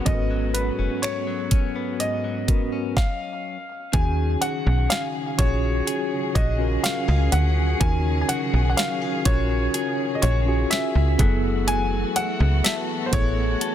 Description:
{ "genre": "contemporary R&B", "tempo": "62 BPM", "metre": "4/4", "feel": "straight", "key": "Eb phrygian", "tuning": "A4 = 440 Hz", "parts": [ { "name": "clear concert grand piano", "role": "melody", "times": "0.0-13.7 s", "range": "Cb5 to Ab5", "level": "-28 LUFS", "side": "left 2 dB", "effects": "digital delay" }, { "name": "mellow tine electric piano", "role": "accompaniment", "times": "0.0-13.7 s", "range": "Cb4 to Cb5", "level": "-27 LUFS", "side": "right 1 dB", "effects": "medium stereo tremolo" }, { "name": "warm studio string section", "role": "sustained chords", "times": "0.0-13.7 s", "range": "Db3 to Ab4", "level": "-33 LUFS", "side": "equal", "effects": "none" }, { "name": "direct-recorded clean electric guitar", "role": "arpeggios", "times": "0.0-13.7 s", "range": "Ab2 to A4", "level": "-33 LUFS", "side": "left 8 dB", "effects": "spring reverb, digital delay" }, { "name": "slap-like FM bass", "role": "bass", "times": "0.1-13.6 s", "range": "Gb1 to Eb2", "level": "-22 LUFS", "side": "equal", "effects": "none" }, { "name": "trap drum kit", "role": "drums", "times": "0.1-13.7 s", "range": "finger snaps, hi-hat, kick drum, snare drum", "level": "-23 LUFS", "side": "equal", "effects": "soft clipping on snare" } ], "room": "little or no reverb", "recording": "dense, heavily limited modern master", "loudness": "-20 LUFS", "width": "side -10 dB against mid", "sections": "0.0-3.9 A section; 3.9-13.7 B section", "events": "stop 3.0-3.9", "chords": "0.0 Abm11; 3.9 Ebm11; 11.2 Gbm11" }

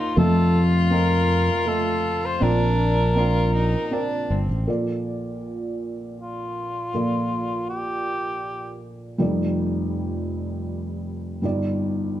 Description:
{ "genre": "acoustic folk-pop ballad", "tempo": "80 BPM", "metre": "3/4", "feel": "straight", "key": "Bb major", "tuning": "A4 = 440 Hz", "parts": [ { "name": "mellow cor anglais", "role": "melody", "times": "0.0-8.8 s", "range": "F4 to C5", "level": "-26 LUFS", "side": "equal", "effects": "none" }, { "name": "rich violin", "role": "second line", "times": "0.0-4.7 s", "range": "C4 to F4", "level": "-28 LUFS", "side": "left 3 dB", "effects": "none" }, { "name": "felt-muted upright piano", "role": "accompaniment", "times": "0.0-12.2 s", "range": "F1 to Eb5", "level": "-25 LUFS", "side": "right 1 dB", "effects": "none" }, { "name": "fingered electric bass", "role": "bass", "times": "0.2-4.7 s", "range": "G1 to F2", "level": "-20 LUFS", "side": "equal", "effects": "none" } ], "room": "moderate studio reverb, RT60 0.8 s", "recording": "dark, warm production", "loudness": "-21 LUFS", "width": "side -12 dB against mid", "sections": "0.0-4.7 A section; 4.7-12.2 B section", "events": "none", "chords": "0.2 F7; 2.4 Bbadd9; 4.7 Bbmaj7; 9.2 F13; 11.4 Ebmaj7/G" }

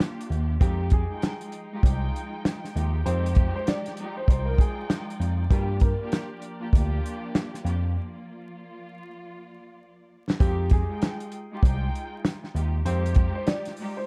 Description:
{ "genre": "hip hop, boom-bap hip-hop", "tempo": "98 BPM", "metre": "4/4", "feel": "swing 62% on 16ths", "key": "F dorian", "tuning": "A4 = 440 Hz", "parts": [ { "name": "warm studio string section", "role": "accompaniment", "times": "0.0-14.1 s", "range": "Ab3 to G5", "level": "-38 LUFS", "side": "equal", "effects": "cassette tape, high-pass filter, low-pass filter" }, { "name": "warm soul drum kit", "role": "drums", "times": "0.0-13.9 s", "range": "hi-hat, kick drum, snare drum", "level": "-24 LUFS", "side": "equal", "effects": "none" }, { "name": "bell-like tine electric piano", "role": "bass", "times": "0.3-13.3 s", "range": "C2 to G2", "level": "-28 LUFS", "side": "equal", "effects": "none" }, { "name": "warm upright piano", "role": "melody", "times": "0.6-14.1 s", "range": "G4 to D5", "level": "-37 LUFS", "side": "equal", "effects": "high-pass filter, low-pass filter" }, { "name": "warm symphonic string section", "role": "sustained chords", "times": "0.6-10.4 s", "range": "F3 to G5", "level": "-45 LUFS", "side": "equal", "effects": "high-pass filter, low-pass filter" }, { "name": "mellow horn section", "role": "stabs", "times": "0.6-5.7, 10.4-13.1 s", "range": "Eb3 to Bb4", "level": "-45 LUFS", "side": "equal", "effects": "none" } ], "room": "little or no reverb", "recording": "vinyl crackle", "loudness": "-26 LUFS", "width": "mono", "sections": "0.6-10.4 A section; 10.4-14.1 A section", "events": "break 0.0-0.6, 8.0-10.4; drum fill 9.8-10.4", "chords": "0.0 Gm7; 0.6 Fm9; 5.5 Gm7; 10.4 Fm9" }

